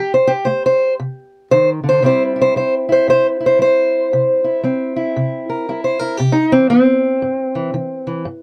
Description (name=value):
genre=acoustic country blues, solo or duo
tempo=115 BPM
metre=4/4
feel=swing 62% on 8ths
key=C mixolydian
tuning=A4 = 441 Hz
part: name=fingerpicked steel-string acoustic guitar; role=solo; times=0.0-8.4 s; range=G2 to C5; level=-16 LUFS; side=equal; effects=none
room=light reverb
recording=close, detailed microphones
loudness=-16 LUFS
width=mono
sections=0.0-8.4 A section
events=steel-string acoustic guitar solo 0.0-8.4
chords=0.0 F7; 2.0 C